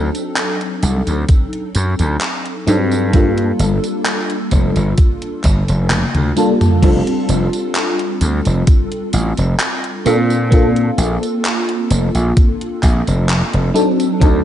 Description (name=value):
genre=vaporwave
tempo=65 BPM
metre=4/4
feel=straight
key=F major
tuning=A4 = 441 Hz
part: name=FM electric piano with soft pad layer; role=accompaniment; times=0.0-14.4 s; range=F#3 to A4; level=-18 LUFS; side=equal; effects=ensemble chorus, cassette tape, tape echo
part: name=gritty slap bass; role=bass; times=0.0-14.4 s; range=F1 to Bb2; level=-16 LUFS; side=equal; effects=overdrive
part: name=gated 80s digital drum machine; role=drums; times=0.1-14.4 s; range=crash cymbal, handclaps, hi-hat, tambourine, toms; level=-21 LUFS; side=equal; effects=gated reverb, overdrive
part: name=electronic kick drum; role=drums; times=1.3-14.4 s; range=none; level=-12 LUFS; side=equal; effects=overdrive
room=light reverb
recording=nothing above 11.0 kHz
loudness=-13 LUFS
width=side -11 dB against mid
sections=0.0-6.8 A section; 6.8-14.4 B section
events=drum fill 5.9-6.8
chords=0.0 D7b9; 3.1 Gm9; 6.8 F69; 10.1 Bbmaj7; 13.7 D7b9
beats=0.36 1.29 2.21 | 3.13 4.05 4.98 5.90 | 6.83 7.75 8.67 9.59 | 10.52 11.44 12.36 13.29 | 14.21